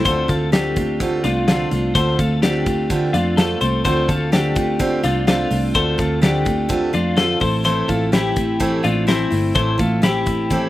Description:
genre	jangly indie pop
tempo	126 BPM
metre	4/4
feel	straight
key	D minor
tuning	A4 = 443 Hz
part	picked steel-string acoustic guitar	accompaniment	0.0-10.7 s	A2 to F4	-21 LUFS	right 3 dB	none
part	twelve-string electric guitar	arpeggios	0.0-10.7 s	C4 to C5	-21 LUFS	left 4 dB	slapback echo
part	vintage muted picked electric bass	bass	0.1-10.7 s	G1 to F2	-23 LUFS	equal	none
part	big rock drum kit	drums	0.1-10.6 s	hi-hat, kick drum, snare drum	-20 LUFS	left 1 dB	none
room	little or no reverb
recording	recorded outdoors, with no room sound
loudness	-16 LUFS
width	side -15 dB against mid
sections	0.1-10.7 A section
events	none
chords	0.1 Dm7; 7.4 Fmaj7

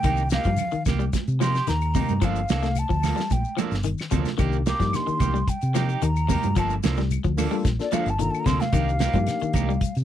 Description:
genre	afrobeat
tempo	110 BPM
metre	4/4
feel	straight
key	C dorian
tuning	A4 = 439 Hz
part	mellow hollow concert flute	melody	0.0-10.0 s	D5 to D6	-28 LUFS	equal	none
part	electric guitar at the edge of break-up	arpeggios	0.0-9.9 s	C3 to A3	-29 LUFS	left 8 dB	none
part	hollow-body short-scale fingered electric bass	bass	0.0-10.0 s	G1 to C3	-25 LUFS	equal	none
part	damped 70s drum kit	drums	0.0-10.0 s	hi-hat, kick drum, snare drum	-27 LUFS	equal	none
part	claves	percussion	0.0-9.7 s	none	-40 LUFS	left 21 dB	none
part	shekere	percussion	0.0-10.0 s	none	-35 LUFS	left 8 dB	none
part	electric guitar at the edge of break-up	stabs	0.1-9.7 s	F3 to A4	-31 LUFS	right 8 dB	none
part	congas	percussion	0.1-9.7 s	none	-30 LUFS	right 16 dB	none
part	tine electric piano	accompaniment	4.4-9.7 s	Bb3 to A4	-31 LUFS	left 6 dB	medium stereo tremolo
room	light reverb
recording	dry, close 1970s-style studio recording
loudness	-21 LUFS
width	side -11 dB against mid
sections	0.0-10.0 A section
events	flute solo 0.0-10.0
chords	0.0 Cm7; 2.2 Gm9; 4.4 Cm7; 6.6 Gm9; 8.7 Cm7

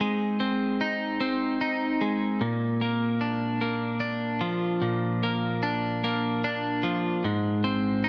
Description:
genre	rock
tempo	50 BPM (dotted quarters)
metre	6/8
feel	straight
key	unclear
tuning	A4 = 441 Hz
part	twelve-string electric guitar	solo	0.0-8.1 s	Ab2 to Eb4	-27 LUFS	equal	slapback echo
room	moderate huge ambient reverb, RT60 7.5 s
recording	none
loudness	-27 LUFS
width	mono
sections	0.0-8.1 A section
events	none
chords	0.0 Ab; 2.4 Bb; 7.2 Ab

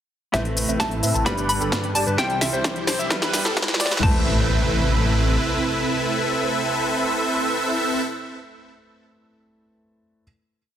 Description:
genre	EDM, festival progressive house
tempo	130 BPM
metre	4/4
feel	straight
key	A minor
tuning	A4 = 440 Hz
part	hollow square pluck	melody	0.3-8.0 s	E5 to B5	-27 LUFS	equal	chorus, vintage 12-bit sampler grit, digital delay
part	bright grand piano	accompaniment	0.3-10.2 s	G2 to C5	-32 LUFS	equal	sidechain pumping, digital delay
part	lush unison pad	sustained chords	0.3-8.0 s	C3 to B4	-31 LUFS	equal	chorus, phaser, sidechain pumping
part	dark concert grand piano	arpeggios	0.3-8.0 s	A4 to A5	-31 LUFS	left 1 dB	vintage 12-bit sampler grit, sidechain pumping, low-pass filter, digital delay
part	supersaw chords	riff	0.3-8.0 s	C4 to A5	-24 LUFS	right 1 dB	phaser, sidechain pumping, low-pass filter, digital delay
part	detuned saw bass	bass	0.3-5.4 s	G1 to A2	-25 LUFS	equal	sidechain pumping
part	big-room dance drum kit	drums	0.3-4.1 s	cabasa, crash cymbal, hi-hat, snare drum	-25 LUFS	left 1 dB	none
part	electronic kick drum	drums	0.3-4.1 s	none	-25 LUFS	equal	high-pass filter on kick, high-pass filter on room
part	riser and impact	sound effects	2.4-8.1 s	none	-31 LUFS	equal	none
room	moderate lush hall reverb, RT60 1.6 s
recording	dense, heavily limited modern master, high-pass filter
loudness	-19 LUFS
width	side -10 dB against mid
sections	0.3-4.0 build; 4.0-7.7 final chord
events	build-up 0.3-4.0; drum fill 0.3-4.0; filter sweep on supersaw synth 0.3-4.0; filter sweep on grand piano 0.3-4.0; filter sweep on analog synth pad 0.3-4.0; filter sweep 0.3-4.0; riser 2.4-4.0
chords	0.3 Amadd9; 1.3 G; 2.2 C; 3.1 Em; 4.0 Amadd9

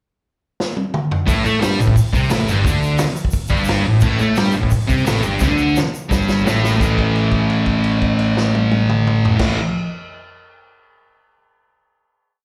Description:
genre	garage rock duo or trio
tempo	174 BPM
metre	4/4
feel	straight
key	A minor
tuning	A4 = 441 Hz
part	vintage drum kit	drums	0.6-9.5 s	crash cymbal, hi-hat, kick drum, snare drum, toms	-23 LUFS	equal	none
part	thick fuzz guitar	riff	1.3-9.6 s	G2 to A4	-19 LUFS	equal	distortion, slapback echo
part	overdriven picked electric bass	bass	1.3-9.5 s	G1 to A2	-24 LUFS	equal	tube saturation
part	egg shaker	percussion	1.3-7.0 s	none	-39 LUFS	equal	none
room	light reverb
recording	live gig heard through the venue's PA, club reverb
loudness	-17 LUFS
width	mono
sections	0.0-1.3 pickup bar; 1.3-6.8 riff; 6.8-9.6 final chord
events	drum fill 0.6-1.3, 5.4-6.8; held note 6.8-9.4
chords	0.0 N.C.; 1.3 Am; 6.8 A5

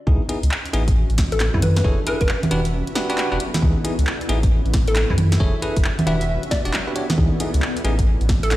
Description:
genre	UK garage, two-step garage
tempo	135 BPM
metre	4/4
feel	swing 64% on 16ths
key	C# minor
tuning	A4 = 438 Hz
part	bell-like tine electric piano	stabs	0.1-7.9 s	G3 to D5	-26 LUFS	equal	digital delay
part	saturated sub bass	bass	0.1-8.6 s	E1 to F#2	-20 LUFS	equal	none
part	electronic kick drum	drums	0.1-8.4 s	none	-20 LUFS	equal	none
part	granular cloud pad	texture	0.6-8.6 s	B3 to E5	-30 LUFS	left 1 dB	built-in reverb, sidechain pumping
part	house drum kit	drums	0.3-8.6 s	congas, handclaps, hi-hat, snare drum	-24 LUFS	right 1 dB	none
part	hollow square pluck	melody	1.3-8.6 s	E4 to E5	-25 LUFS	left 1 dB	chorus, digital delay
room	light reverb, digital ambience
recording	played on a big sound system in a bare room, stone room reverb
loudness	-17 LUFS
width	side -16 dB against mid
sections	0.1-8.6 A section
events	drop 0.1-8.6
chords	0.1 C#m7; 1.0 Am7; 1.6 F#m7; 2.5 Em7; 3.6 C#m7; 4.5 Am7; 5.2 F#m7; 6.1 Em7; 7.2 C#m7

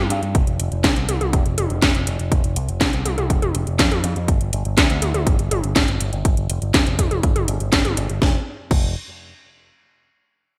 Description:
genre	italo disco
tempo	122 BPM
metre	4/4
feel	straight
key	unclear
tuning	A4 = 440 Hz
part	picked electric bass with an envelope filter	bass	0.0-8.9 s	F1 to G2	-25 LUFS	equal	tube saturation
part	house drum kit	drums	0.1-8.8 s	crash cymbal, handclaps, hi-hat, snare drum, toms	-24 LUFS	equal	studio reverb, gated reverb
part	electronic kick drum	drums	0.3-8.8 s	none	-22 LUFS	equal	studio reverb
room	light reverb, digital ambience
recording	bright 1980s-style digital production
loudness	-20 LUFS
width	mono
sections	0.0-8.2 A section; 8.2-10.2 B section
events	none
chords	none

